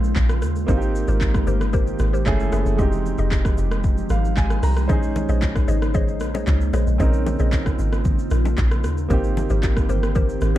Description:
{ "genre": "amapiano", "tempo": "114 BPM", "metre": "4/4", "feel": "straight", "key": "Bb dorian", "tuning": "A4 = 440 Hz", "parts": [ { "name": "warm concert grand piano", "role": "accompaniment", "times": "0.0-10.6 s", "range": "Ab3 to Bb5", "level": "-28 LUFS", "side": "right 4 dB", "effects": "none" }, { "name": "glassy FM pad", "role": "sustained chords", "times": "0.0-10.6 s", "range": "Db3 to G4", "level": "-28 LUFS", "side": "equal", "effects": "ensemble chorus, built-in reverb, sidechain pumping" }, { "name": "deep log drum bass", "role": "bass", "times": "0.0-10.6 s", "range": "F1 to Eb2", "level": "-21 LUFS", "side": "equal", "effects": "none" }, { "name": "deep house drum kit", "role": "drums", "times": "0.0-10.5 s", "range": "handclaps, hi-hat, kick drum, rim click, shaker", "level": "-23 LUFS", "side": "equal", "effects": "overdrive, vintage 12-bit sampler grit" }, { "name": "downlifter", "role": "sound effects", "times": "0.0-0.7 s", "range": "none", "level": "barely audible", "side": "none", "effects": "none" }, { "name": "mallet-like synth pluck", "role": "stabs", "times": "0.7-10.6 s", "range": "G4 to Fb5", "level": "-30 LUFS", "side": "left 3 dB", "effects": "chorus, tape echo" }, { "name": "congas and bongos", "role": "percussion", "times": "4.9-10.6 s", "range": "none", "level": "-30 LUFS", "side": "left 2 dB", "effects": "none" } ], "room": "digital ambience", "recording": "dark, warm production", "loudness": "-18 LUFS", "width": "side -14 dB against mid", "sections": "0.0-10.6 A section", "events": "grand piano fill 3.8-4.9", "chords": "0.0 Bbm11; 0.7 Abmaj9; 2.3 Gbm9; 2.8 Fm9; 4.9 Bbm11; 9.1 Abmaj9" }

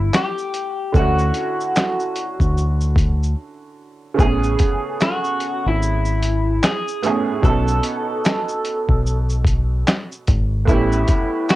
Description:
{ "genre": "lo-fi hip hop", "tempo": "74 BPM", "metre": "4/4", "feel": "swing 60% on 16ths", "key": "A major", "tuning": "A4 = 440 Hz", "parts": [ { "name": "electric guitar through a small old amp", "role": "melody", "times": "0.0-11.6 s", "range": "E4 to A4", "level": "-23 LUFS", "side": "left 1 dB", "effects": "analog chorus, cassette tape, plate reverb" }, { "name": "bright upright piano", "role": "accompaniment", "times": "0.0-11.6 s", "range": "A2 to A4", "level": "-24 LUFS", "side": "right 5 dB", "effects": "cassette tape" }, { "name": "deep dub fingered electric bass", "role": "bass", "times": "0.0-11.0 s", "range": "G#1 to D2", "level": "-19 LUFS", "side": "equal", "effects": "none" }, { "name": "dusty soul sampler-style drum kit", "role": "drums", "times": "0.1-11.6 s", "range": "handclaps, hi-hat, kick drum, shaker, snare drum", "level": "-19 LUFS", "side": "equal", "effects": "cassette tape" } ], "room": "light reverb", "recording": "home recording on cassette", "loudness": "-17 LUFS", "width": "side -16 dB against mid", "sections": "0.0-11.6 A section", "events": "break 3.4-4.2", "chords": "0.0 A7; 0.9 Dmaj7; 4.2 Amaj7; 7.4 B7; 10.7 A7" }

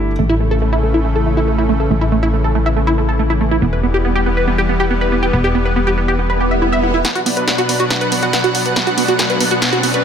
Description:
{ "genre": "uplifting trance", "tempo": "140 BPM", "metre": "4/4", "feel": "straight", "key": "B minor", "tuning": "A4 = 440 Hz", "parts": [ { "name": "lush unison pad", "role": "sustained chords", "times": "0.0-10.0 s", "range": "B2 to F#5", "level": "-18 LUFS", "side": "left 1 dB", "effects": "chorus" }, { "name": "solid FM bass", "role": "bass", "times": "0.0-7.0 s", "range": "E1 to A1", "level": "-18 LUFS", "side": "equal", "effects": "none" }, { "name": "tight sequenced synth", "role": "arpeggios", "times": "0.2-10.0 s", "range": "A3 to E5", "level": "-18 LUFS", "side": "right 2 dB", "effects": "chorus, phaser, tape echo" }, { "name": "swell and riser", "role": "sound effects", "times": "6.3-10.0 s", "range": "none", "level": "-23 LUFS", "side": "right 2 dB", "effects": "none" }, { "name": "big-room dance drum kit", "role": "drums", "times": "7.0-10.0 s", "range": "hi-hat, snare drum", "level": "-18 LUFS", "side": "equal", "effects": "high-pass filter on cymbals, studio reverb, high-pass filter on snare, high-pass filter on hats" } ], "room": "light reverb", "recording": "none", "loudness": "-13 LUFS", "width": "side -8 dB against mid", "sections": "0.0-7.0 A section; 7.0-10.0 B section", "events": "filter sweep on analog synth pad 0.0-7.0; swell 6.3-7.0; build-up 7.0-10.0; drum fill 7.0-10.0; riser 7.0-10.0", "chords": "0.2 A; 3.6 Em; 7.0 Bm" }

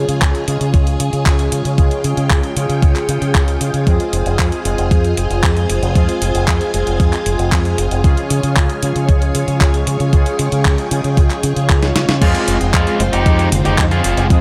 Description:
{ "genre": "italo disco", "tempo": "115 BPM", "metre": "4/4", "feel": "straight", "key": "F minor", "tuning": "A4 = 441 Hz", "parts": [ { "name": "string machine, full ensemble", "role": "sustained chords", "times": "0.0-14.4 s", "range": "Ab3 to Ab5", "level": "-26 LUFS", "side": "equal", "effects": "ensemble chorus" }, { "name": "analog synth brass", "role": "stabs", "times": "0.0-14.4 s", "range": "Db3 to Db5", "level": "-24 LUFS", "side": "equal", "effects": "chorus, delay" }, { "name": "fingered electric bass with an envelope filter", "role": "bass", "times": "0.0-14.4 s", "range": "F1 to Db3", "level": "-20 LUFS", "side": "equal", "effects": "none" }, { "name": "clean 12-bit digital drum machine", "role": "drums", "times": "0.1-14.4 s", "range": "crash cymbal, handclaps, hi-hat, snare drum, toms", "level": "-24 LUFS", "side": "equal", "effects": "none" }, { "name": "electronic kick drum", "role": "drums", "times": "0.2-14.4 s", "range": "none", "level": "-16 LUFS", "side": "equal", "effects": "none" }, { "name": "smooth overdriven lead guitar", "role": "melody", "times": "12.2-14.3 s", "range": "Ab3 to Ab4", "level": "-20 LUFS", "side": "equal", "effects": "digital delay" } ], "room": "digital ambience", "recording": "none", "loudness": "-15 LUFS", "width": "mono", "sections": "0.0-12.2 A section; 12.2-14.4 B section", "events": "drum fill 11.8-12.2", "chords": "0.0 Db; 3.9 Fm; 8.0 Db; 12.2 Fm" }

